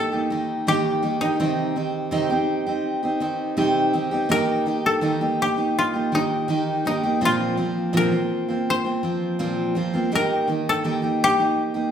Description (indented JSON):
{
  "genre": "acoustic pop",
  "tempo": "82 BPM",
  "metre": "4/4",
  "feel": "straight",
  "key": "unclear",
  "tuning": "A4 = 440 Hz",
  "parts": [
    { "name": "koto", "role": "melody", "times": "0.0-11.9 s", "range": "Eb4 to C5", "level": "-23 LUFS", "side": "left 2 dB", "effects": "none" },
    { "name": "picked steel-string acoustic guitar", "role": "accompaniment", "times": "0.0-11.9 s", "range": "Bb2 to G4", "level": "-21 LUFS", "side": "right 1 dB", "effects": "none" }
  ],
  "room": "wet large studio reverb, RT60 1.3 s",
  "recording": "band playing live in one room",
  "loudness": "-20 LUFS",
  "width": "side -8 dB against mid",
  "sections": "0.0-11.9 A section",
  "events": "none",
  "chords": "0.0 Eb; 1.4 Cm; 4.3 Eb; 7.2 Bbsus2; 10.1 Eb"
}